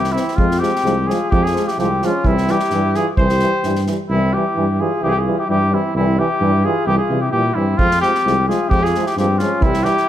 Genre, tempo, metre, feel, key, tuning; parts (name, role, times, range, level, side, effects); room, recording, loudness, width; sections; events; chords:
balkan folk, Balkan brass band; 130 BPM; 2/4; straight; A4 = 438 Hz
mellow cornet; melody; 0.0-10.1 s; E4 to C5; -19 LUFS; equal
mellow flugelhorn; second line; 0.0-10.1 s; C4 to G4; -25 LUFS; left 3 dB
mellow tuba; bass; 0.0-9.9 s; C2 to C3; -20 LUFS; equal
unplugged drum kit; percussion; 0.0-3.9, 7.8-10.0 s; kick drum, snare drum; -22 LUFS; equal
dark trombone; accompaniment; 0.1-10.0 s; G3 to C4; -25 LUFS; left 4 dB
clear euphonium; accompaniment; 0.2-9.9 s; E3 to F3; -24 LUFS; right 6 dB
moderate recital hall reverb, RT60 1.6 s; -14 LUFS; side -11 dB against mid
0.0-4.1 A section; 4.1-10.1 A section
0.4 Fm; 2.2 C; 7.8 Fm